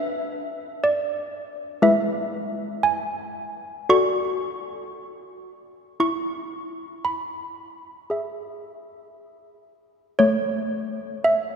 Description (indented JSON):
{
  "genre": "classical, tune for handbells",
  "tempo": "58 BPM",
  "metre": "4/4",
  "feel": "straight",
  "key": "unclear",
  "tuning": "A4 = 440 Hz",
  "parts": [
    { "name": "malleted handbells", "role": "solo", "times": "0.0-11.6 s", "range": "G#3 to C#6", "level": "-22 LUFS", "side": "equal", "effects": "none" }
  ],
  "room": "wet church reverb, RT60 3.8 s",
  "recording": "minimal, uncompressed stereo recording",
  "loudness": "-22 LUFS",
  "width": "side -6 dB against mid",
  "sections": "0.0-11.6 A section",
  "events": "none",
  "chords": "0.0 Bm7/A; 1.9 E/G#; 3.9 D/F#; 6.0 E; 10.2 A",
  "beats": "0.85 | 1.86 2.87 3.92 4.94 | 5.99 7.04 8.08 9.13 | 10.20 11.24"
}